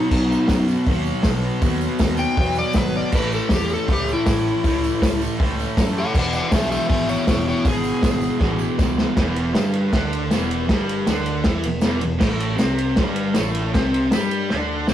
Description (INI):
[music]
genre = garage rock duo or trio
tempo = 159 BPM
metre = 4/4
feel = straight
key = unclear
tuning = A4 = 443 Hz
[part]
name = overdriven slide guitar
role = melody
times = 0.0-8.8 s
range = D#4 to G5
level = -23 LUFS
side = left 2 dB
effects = none
[part]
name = thick fuzz guitar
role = riff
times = 0.0-14.9 s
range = E2 to G4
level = -22 LUFS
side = equal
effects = distortion
[part]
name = growling picked electric bass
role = bass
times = 0.1-14.9 s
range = E1 to G2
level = -27 LUFS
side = equal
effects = overdrive
[part]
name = vintage drum kit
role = drums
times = 0.1-14.9 s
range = crash cymbal, hi-hat, kick drum, ride cymbal, snare drum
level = -22 LUFS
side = equal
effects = none
[part]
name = tambourine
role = percussion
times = 0.1-14.9 s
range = none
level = -41 LUFS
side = right 4 dB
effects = none
[sound]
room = moderate studio reverb, RT60 0.5 s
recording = rough rehearsal-room recording, warm saturation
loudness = -18 LUFS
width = side -11 dB against mid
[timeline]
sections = 0.0-9.2 A section; 9.2-14.9 B section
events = drum fill 8.4-9.2, 14.5-14.9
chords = 0.0 B; 3.1 A; 6.2 E; 9.2 Em7; 12.2 Gsus24